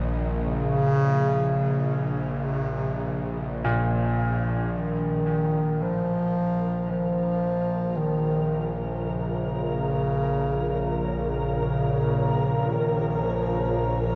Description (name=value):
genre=dark ambient drone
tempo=56 BPM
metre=4/4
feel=straight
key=unclear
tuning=A4 = 440 Hz
part: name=bright grand piano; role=arpeggios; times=0.0-14.2 s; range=A2 to Bb2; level=-32 LUFS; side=equal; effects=shimmer reverb, delay
part: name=bowed-like drone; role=drone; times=0.0-14.2 s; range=Bb1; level=-31 LUFS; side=equal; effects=built-in reverb
part: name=flickering grainy texture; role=texture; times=0.0-14.2 s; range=Bb4 to Eb5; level=-37 LUFS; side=equal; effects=built-in reverb, shimmer reverb
part: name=dark bass clarinet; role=melody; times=0.4-14.0 s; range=Db3 to F3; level=-28 LUFS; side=equal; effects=shimmer reverb, delay
part: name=granular cloud pad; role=sustained chords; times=6.9-14.2 s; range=F4 to Db5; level=-38 LUFS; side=equal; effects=built-in reverb, shimmer reverb
room=wet huge ambient reverb, RT60 8.1 s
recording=worn, warbling old tape, cassette tape, warbly pitch drift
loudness=-25 LUFS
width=mono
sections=0.0-4.7 A section; 4.7-14.2 B section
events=fade-in on ambient pad 4.7-14.2; fade-in on grand piano 4.7-14.2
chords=0.0 Bbm